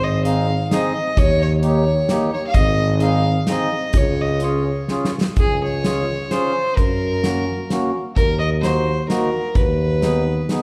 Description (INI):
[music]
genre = alpine folk, alpine dance band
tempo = 129 BPM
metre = 3/4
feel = straight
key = Db major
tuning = A4 = 440 Hz
[part]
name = warm fiddle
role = melody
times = 0.0-10.6 s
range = Ab4 to F5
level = -25 LUFS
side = equal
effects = none
[part]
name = warm tuba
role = bass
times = 0.0-10.5 s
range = Ab1 to Gb2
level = -23 LUFS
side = equal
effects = none
[part]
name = mellow accordion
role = accompaniment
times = 0.2-10.6 s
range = Bb3 to Ab4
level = -27 LUFS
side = equal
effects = none
[part]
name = loose indie drum kit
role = drums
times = 0.3-10.6 s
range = hi-hat, kick drum, snare drum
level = -24 LUFS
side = equal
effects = none
[sound]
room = wet recital hall reverb, RT60 1.5 s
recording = heard from further back in the room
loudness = -19 LUFS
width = mono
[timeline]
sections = 0.0-5.4 A section; 5.4-10.6 B section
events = drum fill 4.9-5.4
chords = 0.0 Ab; 1.2 Eb7; 2.5 Ab; 3.9 Db; 6.8 Gb; 8.2 Ebm; 9.6 Abm/Eb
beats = 0.25 0.72 | 1.18 1.63 2.09 | 2.55 3.01 3.48 | 3.94 4.41 4.89 | 5.37 5.84 6.30 | 6.77 7.24 7.70 | 8.16 8.62 9.09 | 9.55 10.02 10.50